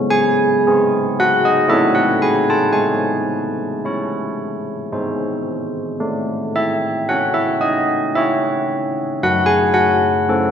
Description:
classical, tune for church bells; 56 BPM; 3/4; straight; A4 = 440 Hz
carillon bells; solo; 0.0-10.5 s; F#3 to A5; -15 LUFS; equal
wet concert hall reverb, RT60 2.1 s; recorded in a church or concert hall; -15 LUFS; side -8 dB against mid
0.0-10.5 A section
0.0 G#; 1.7 A; 2.8 C#m/G#; 4.9 G#; 6.0 A; 9.2 F#m

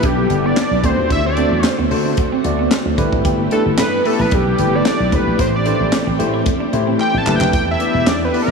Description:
early-eighties boogie funk; 112 BPM; 4/4; straight; A4 = 440 Hz
fat analog lead; melody; 0.0-8.5 s; G4 to A5; -20 LUFS; right 1 dB; diffuse ambient delay
barky tine electric piano; accompaniment; 0.0-8.5 s; A3 to D5; -20 LUFS; left 2 dB; overdrive, wide subtle chorus
string machine, violins; sustained chords; 0.0-8.5 s; D3 to G4; -24 LUFS; equal; ensemble chorus
clean electric guitar; riff; 0.0-8.5 s; B3 to G4; -25 LUFS; right 4 dB; wide subtle chorus
slap bass with an envelope filter; bass; 0.0-8.5 s; E1 to D3; -20 LUFS; equal
tight funk drum kit; drums; 0.0-8.5 s; handclaps, hi-hat, kick drum, snare drum; -21 LUFS; equal
wet cathedral reverb, RT60 5.9 s; dreamy mix soaked in reverb, studio reverb; -14 LUFS; side -4 dB against mid
0.0-8.5 A section
analog synth lead solo 0.0-8.5; drum fill 7.0-7.5
0.0 Em7; 0.8 D7; 3.0 G69; 5.4 Am7; 7.5 Em7

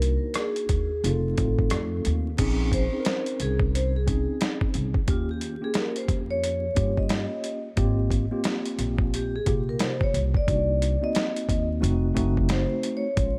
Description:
hip hop, jazz-hop; 89 BPM; 4/4; swing 61% on 16ths; Bb minor; A4 = 440 Hz
vibraphone with soft mallets; melody; 0.0-13.4 s; F4 to Eb5; -33 LUFS; equal; tape echo
mellow tine electric piano; accompaniment; 0.0-13.4 s; C3 to Bb4; -32 LUFS; equal
upright bass; bass; 0.0-13.4 s; F1 to G2; -29 LUFS; equal
dusty soul sampler-style drum kit; drums; 0.0-13.4 s; crash cymbal, hi-hat, kick drum, rim click, snare drum; -29 LUFS; equal; overdrive
little or no reverb; vinyl crackle; -25 LUFS; mono
0.0-2.4 A section; 2.4-13.4 B section
vibraphone solo 2.4-13.4
0.0 Cm7b5; 1.0 F7; 2.4 Bbm11; 5.1 Eb9; 7.8 Abmaj13; 10.5 Cm7b5; 11.8 F7b9

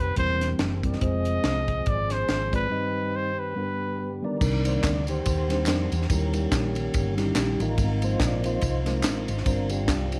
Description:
uptempo gospel; 142 BPM; 4/4; swing 58% on 8ths; C harmonic minor, C minor from 4.4 s; A4 = 440 Hz
mellow trumpet; melody; 0.0-4.2 s; B4 to Eb5; -31 LUFS; equal
tonewheel organ; sustained chords; 0.0-10.2 s; G2 to D5; -34 LUFS; equal; overdrive, chorus vibrato, stopped rotary speaker
hollow-body short-scale fingered electric bass; bass; 0.0-10.2 s; E1 to F2; -30 LUFS; equal
mellow tine electric piano; accompaniment; 0.2-10.1 s; G2 to Eb5; -32 LUFS; equal
crisp fusion drum kit; drums; 0.2-10.2 s; crash cymbal, hi-hat, kick drum, ride cymbal, snare drum; -31 LUFS; equal
tambourine and handclaps; percussion; 4.4-10.2 s; -39 LUFS; equal
light reverb; -26 LUFS; mono
0.0-4.4 A section; 4.4-10.2 B section
break 2.7-4.4; tonewheel organ solo 4.4-10.2
0.2 C7/E; 1.0 Fm; 2.7 Cm/G; 3.6 G; 4.4 Cm9; 6.1 Eb7b9; 7.8 Ab69; 9.5 G7sus4

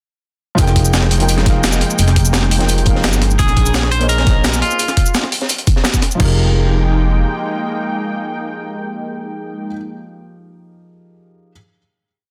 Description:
liquid drum and bass; 171 BPM; 4/4; straight; F minor; A4 = 440 Hz
felt-muted upright piano; accompaniment; 0.5-11.5 s; F3 to G5; -25 LUFS; equal; digital delay
lush unison pad; sustained chords; 0.6-9.7 s; Ab3 to G5; -26 LUFS; equal; chorus, phaser, vintage 12-bit sampler grit
upright bass; bass; 0.6-7.2 s; F1 to Bb1; -17 LUFS; equal
breakbeat sampler-style drum kit; drums; 0.6-6.3 s; crash cymbal, hi-hat, shaker, snare drum; -22 LUFS; equal
crunchy breakbeat drum kit; drums; 0.6-6.1 s; hi-hat, snare drum; -26 LUFS; equal; high-pass filter on hats, high-pass filter on snare, high-pass filter on room
electronic kick drum; drums; 0.6-6.3 s; -17 LUFS; equal; overdrive
clean electric guitar; melody; 3.4-5.3 s; F4 to C5; -22 LUFS; equal; digital delay
small room ambience; dense, heavily limited modern master; -15 LUFS; mono
0.6-6.2 drop; 6.2-9.0 final chord
drop 0.6-6.2
0.6 Fm11; 3.4 Bbm11; 4.8 N.C.; 6.2 Fm11

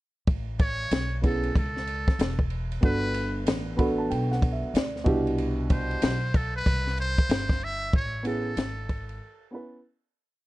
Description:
hip hop, jazz-hop; 94 BPM; 4/4; swing 63% on 16ths; A4 = 440 Hz
upright bass; bass; 0.3-9.2 s; E1 to D2; -31 LUFS; equal
compact cocktail drum kit; drums; 0.3-9.2 s; hi-hat, kick drum, ride cymbal, snare drum; -26 LUFS; equal; vintage 12-bit sampler grit
trumpet with metal mute; melody; 0.6-9.5 s; A4 to E5; -32 LUFS; equal
dark upright piano; accompaniment; 1.2-9.8 s; B2 to B5; -28 LUFS; right 2 dB
light reverb; dark, warm production; -24 LUFS; side -18 dB against mid
0.3-10.5 A section
upright piano fill 3.5-5.4; fade-out 7.9-10.5; break 9.2-10.5
0.3 Aadd9; 2.8 Gmaj9; 5.1 Cmaj9; 7.9 Amaj9

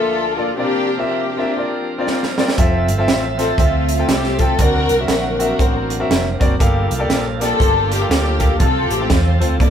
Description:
uptempo gospel; 119 BPM; 4/4; swing 61% on 8ths; F major; A4 = 440 Hz
warm studio string section; melody; 0.0-9.7 s; G3 to Bb4; -20 LUFS; left 2 dB
bright concert grand piano; accompaniment; 0.0-9.7 s; G2 to G5; -21 LUFS; left 2 dB
bright tonewheel organ; sustained chords; 0.0-9.7 s; D2 to E5; -28 LUFS; right 3 dB; slow rotary speaker, overdrive
mellow French horn section; sustained chords; 0.0-9.7 s; D2 to E5; -29 LUFS; right 5 dB
crisp fusion drum kit; drums; 2.1-9.7 s; hi-hat, kick drum, snare drum; -18 LUFS; right 1 dB
fingered electric bass; bass; 2.6-9.7 s; F1 to E2; -20 LUFS; right 1 dB
moderate studio reverb, RT60 0.7 s; band playing live in one room; -14 LUFS; side -8 dB against mid
0.0-9.7 A section
drum fill 2.1-2.6
0.0 Bbmaj7/D; 0.6 C9sus4; 2.6 Fmaj7; 4.6 D7b13; 6.6 Gm9; 8.6 F

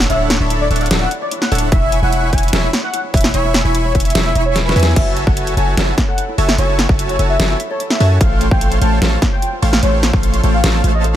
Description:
future bass; 148 BPM; 4/4; half-time; F# minor; A4 = 440 Hz
Celtic harp; arpeggios; 0.0-11.2 s; E4 to G#5; -27 LUFS; left 2 dB; sidechain pumping, ping-pong delay
dense compressed supersaw; riff; 0.0-11.2 s; A3 to C#6; -21 LUFS; right 1 dB; sidechain pumping
long sustained 808-style bass; bass; 0.0-11.2 s; D1 to F#2; -16 LUFS; equal; sidechain pumping
dubstep drum kit; drums; 0.0-11.1 s; crash cymbal, hi-hat, snare drum; -19 LUFS; equal; overdrive
warm velvety synth lead; melody; 0.1-11.1 s; B4 to A5; -22 LUFS; equal; chorus, sidechain pumping, digital delay
electronic kick drum; drums; 1.7-10.2 s; -16 LUFS; equal; overdrive
little or no reverb; -12 LUFS; side -11 dB against mid
0.0-5.0 A section; 5.0-11.2 A section
drop 0.0-5.0, 5.0-11.2; drum fill 4.6-5.0
0.0 Dmaj9; 1.7 C#m7/E; 5.0 F#m9; 8.2 A7alt

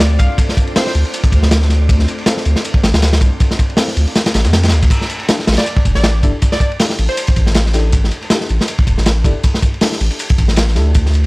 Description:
drum and bass, jungle; 159 BPM; 4/4; swing 55% on 16ths; A4 = 440 Hz
glassy wavetable pluck; melody; 0.0-0.9, 5.6-7.4 s; C5 to F5; -24 LUFS; right 1 dB; chorus, dub echo
soft string machine; sustained chords; 0.0-4.9 s; A3 to F4; -28 LUFS; equal; ensemble chorus
saturated sub bass; bass; 0.0-11.3 s; E1 to F2; -13 LUFS; equal
crunchy breakbeat drum kit; drums; 0.0-11.3 s; crash cymbal, hi-hat, kick drum, ride cymbal, snare drum; -14 LUFS; equal
dusty soul sampler-style drum kit; drums; 0.0-11.3 s; hi-hat, snare drum, tambourine; -29 LUFS; left 1 dB
wind-like tuned noise texture; texture; 0.1-4.9 s; D5 to D6; -36 LUFS; right 1 dB
deep mellow chord stab; stabs; 0.8-10.9 s; C4 to A4; -26 LUFS; left 2 dB; chorus, cassette tape, dub echo
studio ambience; dry, gritty hardware recording, vinyl crackle; -11 LUFS; side -24 dB against mid
0.0-4.9 A section; 4.9-11.3 A section
drop 0.0-4.9, 4.9-11.3
0.0 Dm7; 4.9 A7sus4

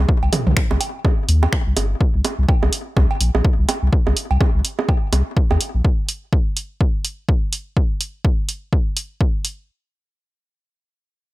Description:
minimal techno; 125 BPM; 4/4; swing 59% on 16ths; C minor; A4 = 440 Hz
saturated sub bass; bass; 0.0-5.8 s; G1 to Eb2; -17 LUFS; equal; sidechain pumping
electronic kick drum; drums; 0.1-9.3 s; -17 LUFS; equal
electronic cowbell, toms and bongos; percussion; 0.2-5.6 s; -24 LUFS; right 4 dB; ping-pong delay
punchy analog drum machine; drums; 0.3-9.6 s; finger snaps, hi-hat; -22 LUFS; right 1 dB
little or no reverb; -17 LUFS; side -18 dB against mid
0.0-9.7 A section

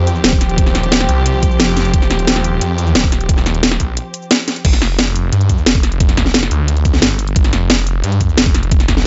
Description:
dark technical drum and bass; 177 BPM; 4/4; straight; A4 = 440 Hz
dark studio string section; sustained chords; 0.0-4.6 s; F3 to G4; -23 LUFS; equal; sidechain pumping
snarling distorted saw bass; bass; 0.0-9.1 s; Eb1 to G2; -18 LUFS; equal; distortion, tube saturation, sidechain pumping
drum and bass drum kit; drums; 0.1-9.0 s; crash cymbal, hi-hat, shaker, snare drum; -17 LUFS; equal; overdrive
electronic kick drum; drums; 0.3-9.0 s; -16 LUFS; equal; overdrive
digital ambience; nothing above 7.8 kHz; -14 LUFS; mono
0.0-4.6 A section; 4.6-9.1 A section
drop 0.0-4.6, 4.6-9.1; break 4.0-4.6
0.0 F5; 4.6 G5

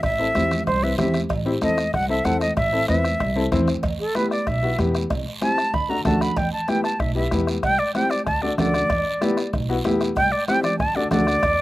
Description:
latin, cumbia; 190 BPM; 4/4; straight; E minor from 3.8 s; A4 = 440 Hz
silver concert flute; melody; 0.0-11.6 s; A4 to B5; -22 LUFS; equal
upright bass; bass; 0.0-11.6 s; A1 to E2; -27 LUFS; equal
bombo; percussion; 0.0-11.6 s; -28 LUFS; left 1 dB
congas; percussion; 0.0-11.6 s; -28 LUFS; right 2 dB; slapback echo
cowbell and timbales; percussion; 0.0-11.6 s; -34 LUFS; right 4 dB; slapback echo
guiro; percussion; 0.0-11.6 s; -37 LUFS; right 4 dB
warm upright piano; accompaniment; 0.2-11.3 s; A3 to C5; -25 LUFS; left 3 dB
little or no reverb; recorded outdoors, with no room sound; -19 LUFS; side -16 dB against mid
0.0-3.8 A section; 3.8-11.6 B section
flute solo 3.8-11.6
0.0 Am; 3.8 Em; 5.1 C; 5.7 D; 6.4 Em; 7.6 C; 8.3 D; 8.9 Em; 10.2 C; 10.8 D

